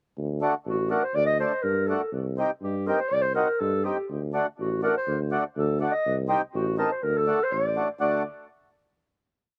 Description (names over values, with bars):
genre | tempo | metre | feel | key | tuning
klezmer | 123 BPM | 2/4 | straight | D phrygian dominant | A4 = 441 Hz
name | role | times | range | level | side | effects
breathy tuba | bass | 0.2-8.2 s | A1 to G2 | -32 LUFS | equal | none
mellow accordion | accompaniment | 0.4-8.2 s | A3 to A4 | -30 LUFS | equal | slapback echo
mellow clarinet | melody | 0.7-8.2 s | F#4 to Eb5 | -28 LUFS | equal | slapback echo
room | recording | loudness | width
little or no reverb | recorded outdoors, with no room sound | -26 LUFS | mono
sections
0.2-8.0 A section; 8.0-9.0 final chord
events
none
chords
0.2 D; 2.1 Cm; 4.1 D; 6.1 Cm; 7.0 D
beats
| 0.17 0.66 | 1.15 1.64 | 2.13 2.62 | 3.11 3.60 | 4.09 4.58 | 5.07 5.56 | 6.05 6.54 | 7.03 7.51 | 8.00